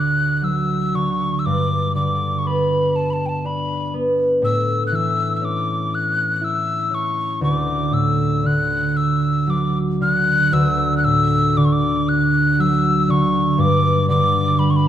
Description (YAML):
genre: celtic folk, Celtic slow air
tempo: 60 BPM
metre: 3/4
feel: rubato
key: D major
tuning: A4 = 438 Hz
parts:
  - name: breathy mellow mid whistle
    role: melody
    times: 0.0-14.9 s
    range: G5 to F#6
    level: -21 LUFS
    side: left 2 dB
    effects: none
  - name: concert harp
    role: accompaniment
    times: 0.0-14.9 s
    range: D2 to E4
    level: -18 LUFS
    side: right 1 dB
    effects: none
room: moderate scoring stage reverb, RT60 2.0 s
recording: none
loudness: -16 LUFS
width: side -10 dB against mid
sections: 0.0-10.5 A section; 10.5-14.9 A section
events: none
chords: 0.0 D; 1.4 G; 4.4 A; 7.4 D; 13.6 G5